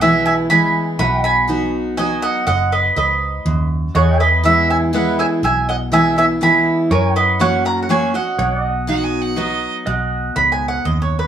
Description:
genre	honky-tonk and classic country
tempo	122 BPM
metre	3/4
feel	straight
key	B major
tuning	A4 = 440 Hz
part	mandolin	melody	0.0-11.3 s	G#4 to B5	-16 LUFS	right 2 dB	plate reverb
part	picked steel-string acoustic guitar	accompaniment	0.0-11.3 s	E2 to F#4	-20 LUFS	equal	none
part	pedal steel guitar	sustained chords	0.0-11.3 s	C#5 to G#5	-26 LUFS	right 3 dB	none
part	vintage muted fingered electric bass	bass	0.0-11.3 s	F#1 to F#2	-21 LUFS	equal	none
part	bright fiddle	second line	8.9-9.7 s	D#5 to G#5	-24 LUFS	right 6 dB	none
room	light reverb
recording	none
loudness	-14 LUFS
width	side -9 dB against mid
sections	0.0-9.9 A section; 9.9-11.3 B section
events	mandolin solo 9.9-11.3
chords	0.0 E; 1.0 B; 3.9 E; 6.9 F#; 8.4 B

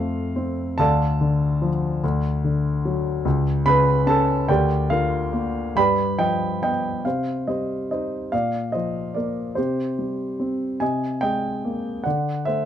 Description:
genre	classical, lyrical solo piano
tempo	48 BPM (dotted quarters)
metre	6/8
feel	rubato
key	C minor from 7.1 s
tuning	A4 = 440 Hz
part	warm grand piano	solo	0.0-12.7 s	C#2 to B5	-20 LUFS	equal	none
room	light reverb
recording	dark, warm production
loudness	-20 LUFS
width	side -10 dB against mid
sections	0.0-7.1 A section; 7.1-12.7 B section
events	none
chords	0.0 F; 0.8 Dm; 2.0 D; 3.2 A/C#; 4.5 Gm/D; 5.8 G7; 7.1 Cm; 8.3 Bb; 9.6 C5; 10.8 Abadd9/C; 12.1 D5

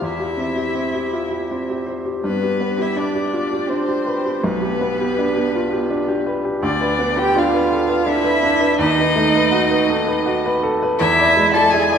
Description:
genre	classical, slow romantic movement for piano trio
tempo	82 BPM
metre	3/4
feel	rubato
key	unclear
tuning	A4 = 440 Hz
part	rich violin	melody	0.0-12.0 s	B4 to A5	-21 LUFS	left 5 dB	none
part	rich cello	second line	0.0-12.0 s	B3 to A4	-22 LUFS	right 5 dB	none
part	clear baby grand piano	accompaniment	0.0-12.0 s	B1 to D5	-19 LUFS	equal	none
room	wet scoring stage reverb, RT60 2.0 s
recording	none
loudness	-16 LUFS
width	side -7 dB against mid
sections	0.0-12.0 A section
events	none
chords	0.0 C/E; 2.2 G; 4.4 G/B; 6.6 Bdim/D; 8.8 B7/D#; 11.0 E7

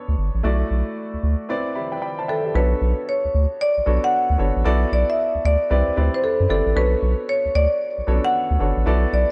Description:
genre	R&B, new jack swing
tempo	114 BPM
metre	4/4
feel	swing 63% on 16ths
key	B minor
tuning	A4 = 440 Hz
part	warm baby grand piano	accompaniment	0.0-9.3 s	A3 to B5	-28 LUFS	equal	none
part	round analog bass	bass	0.1-9.2 s	G1 to F#2	-22 LUFS	equal	none
part	marimba with medium mallets	melody	2.3-9.3 s	A4 to F#5	-24 LUFS	equal	tape echo
room	light reverb, studio reverb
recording	dark, warm production, nothing above 10.7 kHz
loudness	-21 LUFS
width	mono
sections	0.0-2.5 A section; 2.5-9.3 B section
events	break 1.5-2.5; grand piano fill 1.5-2.5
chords	0.4 E9sus4/B; 1.5 Cmaj9; 2.5 Bm9; 4.7 E9sus4/B; 5.7 Cmaj9; 6.8 Bm9

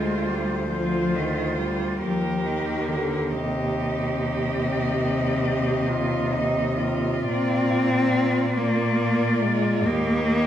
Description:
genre	classical, lyrical piece for cello ensemble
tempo	46 BPM (dotted quarters)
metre	12/8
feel	rubato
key	Eb major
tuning	A4 = 441 Hz
part	rich cello	melody	0.0-10.5 s	Bb4 to Eb5	-30 LUFS	left 4 dB	none
part	warm cello	second line	0.0-10.5 s	Eb4 to G4	-29 LUFS	right 6 dB	none
part	rich cello	accompaniment	0.0-10.5 s	C3 to C4	-24 LUFS	left 2 dB	none
part	clear cello	bass	0.0-10.5 s	D2 to Bb2	-27 LUFS	right 2 dB	none
room	wet recital hall reverb, RT60 1.7 s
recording	minimal, uncompressed stereo recording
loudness	-21 LUFS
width	side -10 dB against mid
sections	0.0-10.5 A section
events	none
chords	0.0 Bb/D (rootless); 2.0 Eb; 7.3 Bb; 9.9 Eb

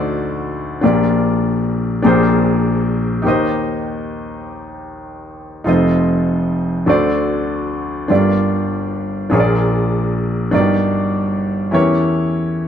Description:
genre	gospel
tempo	49 BPM (dotted quarters)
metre	6/8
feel	straight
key	Bb major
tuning	A4 = 440 Hz
part	warm grand piano	solo	0.0-12.7 s	F1 to Eb5	-15 LUFS	equal	none
room	wet stone room reverb, RT60 1.2 s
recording	band playing live in one room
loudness	-14 LUFS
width	side -8 dB against mid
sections	0.0-12.7 A section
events	none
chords	0.0 D7b9; 0.8 Gm7/Bb; 2.0 Bb13; 3.2 Eb6; 5.7 F7; 6.9 D7; 8.1 Gm7; 9.3 Bb7; 10.5 Ebmaj7/G; 11.7 Edim7

